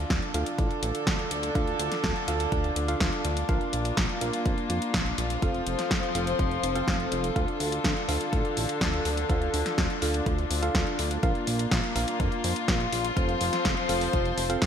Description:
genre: italo disco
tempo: 124 BPM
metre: 4/4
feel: straight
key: unclear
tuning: A4 = 441 Hz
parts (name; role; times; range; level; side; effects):
- warm chamber string section; sustained chords; 0.0-14.7 s; D3 to C5; -30 LUFS; left 2 dB; none
- tine electric piano; stabs; 0.0-14.7 s; C4 to F5; -33 LUFS; right 2 dB; ping-pong delay
- chorused synth bass; bass; 0.0-14.7 s; F1 to F2; -32 LUFS; equal; none
- electronic kick drum; drums; 0.1-14.7 s; none; -29 LUFS; equal; studio reverb
- house drum kit; drums; 0.1-14.7 s; hi-hat, snare drum; -31 LUFS; equal; studio reverb
room: moderate plate reverb, RT60 2.5 s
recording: bright 1980s-style digital production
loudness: -24 LUFS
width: side -8 dB against mid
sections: 0.0-14.7 A section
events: none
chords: 0.0 Dm; 3.5 Bb; 5.4 F; 7.4 Dm; 11.2 Bb; 13.2 F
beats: 0.10 0.59 1.07 | 1.55 2.04 2.52 3.00 | 3.49 3.97 4.46 4.94 | 5.42 5.91 6.39 6.88 | 7.36 7.84 8.33 8.81 | 9.29 9.78 10.26 10.75 | 11.23 11.71 12.20 12.68 | 13.17 13.65 14.13 14.62

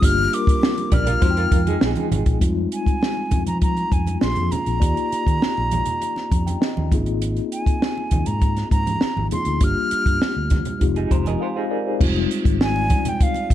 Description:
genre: lush 1970s-style soul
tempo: 100 BPM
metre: 4/4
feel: straight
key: F dorian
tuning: A4 = 442 Hz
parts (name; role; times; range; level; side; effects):
- breathy silver concert flute; melody; 0.0-13.5 s; F5 to F6; -25 LUFS; equal; none
- mellow tine electric piano; accompaniment; 0.0-13.5 s; G3 to Bb5; -26 LUFS; left 4 dB; medium stereo tremolo
- fingered electric bass; bass; 0.0-13.5 s; F1 to F3; -24 LUFS; equal; none
- compact cocktail drum kit; drums; 0.0-13.5 s; crash cymbal, hi-hat, kick drum, snare drum; -20 LUFS; equal; none
- congas; percussion; 0.2-13.5 s; none; -30 LUFS; right 5 dB; none
- vibraphone with soft mallets; texture; 0.3-1.2, 12.6-13.5 s; Bb4 to D5; -35 LUFS; right 4 dB; stereo widening
- electric guitar through a small old amp; riff; 0.9-2.4, 11.0-12.0 s; Eb4 to Eb5; -28 LUFS; right 8 dB; tremolo
room: studio reverb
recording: dark, warm production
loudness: -18 LUFS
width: side -12 dB against mid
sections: 0.0-2.4 A section; 2.4-12.0 B section; 12.0-13.5 C section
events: tine electric piano fill 6.0-7.2, 10.8-12.0; break 11.4-12.0; flute solo 12.0-13.5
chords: 0.0 Gm7; 1.2 Fm7; 4.2 Bb7; 4.8 Ebmaj9; 6.9 Ab6; 9.6 Gm7; 10.8 Fm7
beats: | 0.02 0.62 1.22 1.82 | 2.42 3.02 3.62 4.22 | 4.82 5.42 6.01 6.62 | 7.21 7.81 8.41 9.01 | 9.61 10.21 10.81 11.41 | 12.01 12.61 13.21

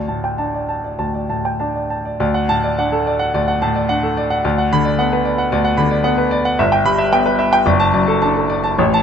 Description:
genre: classical, romantic character piece for solo piano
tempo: 109 BPM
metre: 4/4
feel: uneven beats, rubato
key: D major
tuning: A4 = 441 Hz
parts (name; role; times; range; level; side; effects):
- clear grand piano; solo; 0.0-9.0 s; F#1 to B5; -14 LUFS; equal; none
room: light reverb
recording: close, detailed microphones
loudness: -15 LUFS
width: side -7 dB against mid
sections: 0.0-2.2 A section; 2.2-9.0 A section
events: none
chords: 0.0 D5; 2.2 D; 4.4 Bm/D; 6.6 Em/G; 7.7 D/F#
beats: 0.40 1.00 1.60 | 2.20 2.77 3.34 3.89 | 4.44 4.99 5.51 6.04 | 6.58 7.12 7.66 8.22 | 8.79

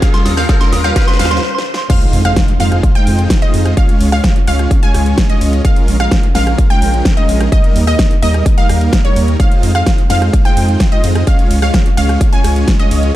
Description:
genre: EDM, festival progressive house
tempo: 128 BPM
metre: 4/4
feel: straight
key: F minor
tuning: A4 = 443 Hz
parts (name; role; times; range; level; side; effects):
- wide unison pluck; arpeggios; 0.0-13.1 s; Db5 to Ab5; -20 LUFS; equal; sidechain pumping, tape echo
- dense compressed supersaw; riff; 0.0-13.1 s; G3 to Ab5; -18 LUFS; right 1 dB; cassette tape, sidechain pumping, tape echo
- big-room dance drum kit; drums; 0.0-13.1 s; crash cymbal, hi-hat, ride cymbal, rim click, snare drum; -21 LUFS; equal; high-pass filter on snare, high-pass filter on hats, high-pass filter on cymbals, high-pass filter on room
- electronic kick drum; drums; 0.0-12.8 s; none; -12 LUFS; equal; none
- riser and impact; sound effects; 0.0-3.8 s; none; -22 LUFS; equal; none
- soft synth bell; melody; 0.1-1.9 s; C6 to G6; -22 LUFS; right 2 dB; chorus, phaser, tape echo
- saturated sub bass; bass; 0.3-13.1 s; Bb1 to F2; -14 LUFS; equal; sidechain pumping
room: little or no reverb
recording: dark, warm production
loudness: -10 LUFS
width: side -14 dB against mid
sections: 0.0-1.9 A section; 1.9-13.2 B section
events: build-up 0.0-1.9; drum fill 0.0-1.4, 1.4-1.9; riser 0.0-1.4; break 1.4-1.9; drop 1.9-13.2; impact 1.9-3.8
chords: 0.0 Eb; 1.9 Fm7; 3.8 Db; 5.6 Bbm7; 7.5 Eb; 9.4 Fm7; 11.3 Db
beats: | 0.02 0.49 0.96 1.43 | 1.90 2.37 2.83 3.30 | 3.77 4.24 4.71 5.18 | 5.65 6.12 6.58 7.05 | 7.52 7.99 8.46 8.93 | 9.40 9.87 10.33 10.80 | 11.27 11.74 12.21 12.68

